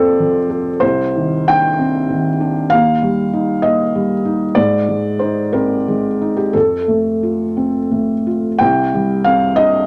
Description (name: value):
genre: neoclassical minimalist piano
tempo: 56-67 BPM (dotted quarters)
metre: 6/8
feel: rubato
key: C minor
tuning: A4 = 444 Hz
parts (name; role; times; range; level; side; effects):
- felt-muted upright piano; solo; 0.0-9.9 s; C2 to G5; -16 LUFS; equal; none
room: moderate studio ambience, RT60 0.5 s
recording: none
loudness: -16 LUFS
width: mono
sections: 0.0-8.6 A section; 8.6-9.9 B section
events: none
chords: 0.0 F; 0.8 Cmadd9; 2.7 Eb; 4.6 Ab; 6.5 F; 8.6 Cmadd9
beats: | 0.82 1.80 | 2.72 3.65 | 4.57 5.54 | 6.54 7.56 | 8.61 9.56